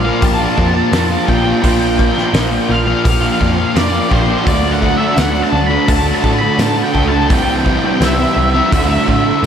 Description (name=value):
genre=rock, shoegaze and dream pop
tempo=85 BPM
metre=4/4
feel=straight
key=unclear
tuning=A4 = 439 Hz
part: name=octave-fuzz lead guitar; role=melody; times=0.0-9.4 s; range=C5 to B5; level=-18 LUFS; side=left 1 dB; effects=distortion, ping-pong delay
part: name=direct-recorded clean electric guitar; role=arpeggios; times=0.0-9.5 s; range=E3 to A4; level=-26 LUFS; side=left 5 dB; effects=wide subtle chorus, ping-pong delay
part: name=overdriven semi-hollow guitar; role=riff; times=0.0-9.5 s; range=Bb2 to G4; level=-18 LUFS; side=right 7 dB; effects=reverse reverb
part: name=thick fuzz guitar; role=riff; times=0.0-9.5 s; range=Bb2 to D4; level=-18 LUFS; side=left 7 dB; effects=distortion, lush chorus
part: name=vintage muted picked electric bass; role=bass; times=0.0-9.5 s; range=Bb1 to A2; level=-19 LUFS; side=equal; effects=none
part: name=loose indie drum kit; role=drums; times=0.2-9.2 s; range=hi-hat, kick drum, snare drum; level=-18 LUFS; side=equal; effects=none
part: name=tambourine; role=percussion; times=5.2-8.2 s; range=none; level=-37 LUFS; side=right 5 dB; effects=none
room=wet huge ambient reverb, RT60 5.2 s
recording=dreamy mix soaked in reverb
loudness=-11 LUFS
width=side -8 dB against mid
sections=0.0-9.5 A section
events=none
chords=0.0 Bb6; 4.5 Dmaj7; 7.3 C; 8.7 D